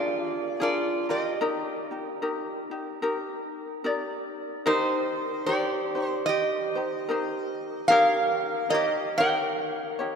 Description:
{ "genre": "hawaiian", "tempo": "74 BPM", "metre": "4/4", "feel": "swing 60% on 8ths", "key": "Eb major, C minor from 4.7 s", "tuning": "A4 = 436 Hz", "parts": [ { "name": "metal-body resonator slide guitar", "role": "melody", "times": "0.0-10.2 s", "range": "Eb4 to G5", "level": "-25 LUFS", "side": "right 1 dB", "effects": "none" }, { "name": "ukulele", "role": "accompaniment", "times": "0.0-10.2 s", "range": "D4 to D5", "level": "-30 LUFS", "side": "left 2 dB", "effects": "none" } ], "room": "wet cathedral reverb, RT60 4.6 s", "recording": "in a vast, echoing space", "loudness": "-24 LUFS", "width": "side -6 dB against mid", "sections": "0.0-4.7 A section; 4.7-10.2 B section", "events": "none", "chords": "0.0 Bb7; 1.4 Ebmaj7; 4.7 Cm7; 7.9 Eb7" }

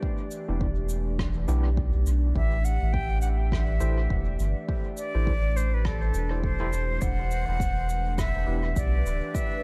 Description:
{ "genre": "ambient dub", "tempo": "103 BPM", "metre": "4/4", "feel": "swing 59% on 16ths", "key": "A dorian", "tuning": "A4 = 437 Hz", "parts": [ { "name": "warbly tape-like pad", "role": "sustained chords", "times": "0.0-9.6 s", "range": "E3 to D5", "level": "-39 LUFS", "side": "equal", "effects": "chorus, built-in reverb, phaser" }, { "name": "electronic kick drum", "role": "drums", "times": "0.0-9.5 s", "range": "none", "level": "-32 LUFS", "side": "equal", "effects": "none" }, { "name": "cabasa and rim click", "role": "drums", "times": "0.3-9.5 s", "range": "none", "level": "-44 LUFS", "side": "equal", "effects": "dub echo" }, { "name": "overdriven tine electric piano", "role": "stabs", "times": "0.5-8.7 s", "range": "B3 to C5", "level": "-41 LUFS", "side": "equal", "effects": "fast tremolo, dub echo" }, { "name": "soft dub sub bass", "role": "bass", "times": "0.5-9.2 s", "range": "D1 to B1", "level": "-28 LUFS", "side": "equal", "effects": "none" }, { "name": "breathy concert flute", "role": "melody", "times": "2.4-9.6 s", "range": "A4 to G5", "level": "-35 LUFS", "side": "equal", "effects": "dub echo" } ], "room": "small room ambience", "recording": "none", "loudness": "-27 LUFS", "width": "mono", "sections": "0.0-7.0 A section; 7.0-9.6 B section", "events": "none", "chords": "0.0 Em7; 2.4 Am7; 7.0 Em7" }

